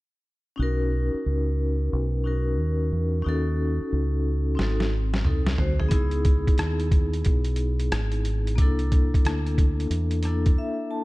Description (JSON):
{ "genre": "hip hop, jazz-hop", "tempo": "90 BPM", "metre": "4/4", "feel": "swing 64% on 16ths", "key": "B major", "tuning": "A4 = 443 Hz", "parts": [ { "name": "vibraphone with medium hard mallets", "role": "accompaniment", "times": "0.6-11.0 s", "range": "Bb3 to A5", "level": "-29 LUFS", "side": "left 1 dB", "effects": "none" }, { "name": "deep dub fingered electric bass", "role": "bass", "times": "0.6-10.5 s", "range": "G#1 to E2", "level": "-24 LUFS", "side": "equal", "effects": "none" }, { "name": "boom bap sampler-style drum kit", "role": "drums", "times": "4.6-10.6 s", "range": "hi-hat, kick drum, rim click, snare drum, toms", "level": "-23 LUFS", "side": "equal", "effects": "none" } ], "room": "little or no reverb", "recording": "dark, warm production", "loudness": "-22 LUFS", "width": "side -20 dB against mid", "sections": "0.6-11.0 A section", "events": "drum fill 4.6-5.9; vibraphone fill 10.3-11.0; break 10.6-11.0", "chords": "0.6 Bmaj7; 3.3 D#m7b5; 4.6 G#7b9; 5.9 C#m9; 8.6 C13", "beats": "| 0.58 1.25 1.92 2.58 | 3.25 3.92 4.58 5.25 | 5.92 6.58 7.25 7.92 | 8.59 9.25 9.92 10.59" }